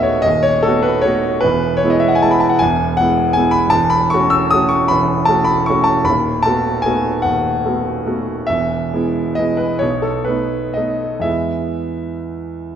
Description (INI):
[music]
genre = classical, romantic nocturne for solo piano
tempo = 41-54 BPM (dotted quarters)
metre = 6/8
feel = rubato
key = E major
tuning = A4 = 442 Hz
[part]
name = clear concert grand piano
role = solo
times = 0.0-12.8 s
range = D#1 to E6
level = -14 LUFS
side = equal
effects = none
[sound]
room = moderate scoring stage reverb, RT60 1.7 s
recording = recorded in a church or concert hall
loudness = -14 LUFS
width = side -9 dB against mid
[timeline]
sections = 0.0-12.8 A section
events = none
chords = 0.0 B7/D#; 1.4 E; 3.7 F#m7/E; 6.1 B7/D#; 8.5 E; 9.8 B7; 11.3 E